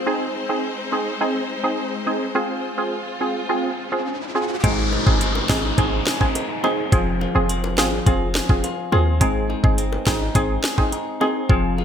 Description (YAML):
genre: dancehall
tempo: 105 BPM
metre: 4/4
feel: straight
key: unclear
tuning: A4 = 445 Hz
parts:
  - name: warm symphonic string section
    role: sustained chords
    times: 0.0-4.6 s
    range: Ab3 to C5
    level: -28 LUFS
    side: left 3 dB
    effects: sidechain pumping
  - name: downlifter and riser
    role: sound effects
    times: 3.3-9.2 s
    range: none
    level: -29 LUFS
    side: left 1 dB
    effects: none
  - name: wavetable chord stab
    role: accompaniment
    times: 0.1-11.8 s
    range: C4 to Ab4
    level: -23 LUFS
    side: right 1 dB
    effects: none
  - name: clean electric guitar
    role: arpeggios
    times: 4.6-11.8 s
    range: F3 to Ab4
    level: -26 LUFS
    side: left 2 dB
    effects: ping-pong delay
  - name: clean 808-style bass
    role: bass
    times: 4.6-11.8 s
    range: F1 to Eb2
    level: -22 LUFS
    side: equal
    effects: none
  - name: island pop drum kit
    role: drums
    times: 4.6-11.6 s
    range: hi-hat, kick drum, snare drum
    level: -20 LUFS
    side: equal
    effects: gated reverb
  - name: bongos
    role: percussion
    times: 4.9-11.8 s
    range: none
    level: -34 LUFS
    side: left 6 dB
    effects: none
room: light reverb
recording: bright 1980s-style digital production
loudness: -18 LUFS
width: side -8 dB against mid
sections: 0.0-4.6 A section; 4.6-11.8 B section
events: riser 3.3-4.6; hi-hats muted 11.5-11.8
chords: 0.1 Ab; 2.4 Fm; 4.6 Ab; 6.9 Fm; 9.2 Ab